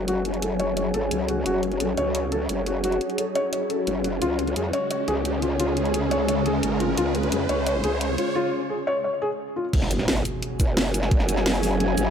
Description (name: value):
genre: dark technical drum and bass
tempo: 174 BPM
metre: 4/4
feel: straight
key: unclear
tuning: A4 = 442 Hz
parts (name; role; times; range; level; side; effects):
- swarming drone; sustained chords; 0.0-12.1 s; C#3 to G#4; -29 LUFS; equal; built-in reverb, sidechain pumping
- growl bass; bass; 0.0-12.1 s; F#1 to E#2; -27 LUFS; equal; chorus, overdrive, sidechain pumping
- riser and impact; sound effects; 3.0-11.1 s; none; -34 LUFS; right 2 dB; none
- warbly tape-like pad; texture; 0.0-12.1 s; C#4 to G#5; -30 LUFS; left 1 dB; chorus, built-in reverb, sidechain pumping
- felt-muted upright piano; arpeggios; 0.1-9.6 s; E#4 to C#5; -27 LUFS; left 1 dB; sidechain pumping, low-pass filter, tape echo
- drum and bass drum kit; drums; 0.1-12.0 s; cabasa, crash cymbal, hi-hat, snare drum; -28 LUFS; equal; high-pass filter on hats, studio reverb, high-pass filter on toms, high-pass filter on cymbals, high-pass filter on snare, high-pass filter on perc
- electronic kick drum; drums; 9.7-11.2 s; none; -21 LUFS; equal; studio reverb
room: moderate lush hall reverb, RT60 2.1 s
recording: none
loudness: -22 LUFS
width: side -8 dB against mid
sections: 0.0-9.7 A section; 9.7-12.1 B section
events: build-up 0.0-9.7; filter sweep on felt piano 0.0-9.7; riser 3.0-8.4; break 8.4-9.7; drop 9.7-12.1; impact 9.7-11.1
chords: 0.0 F#5; 4.2 C#; 9.7 F#5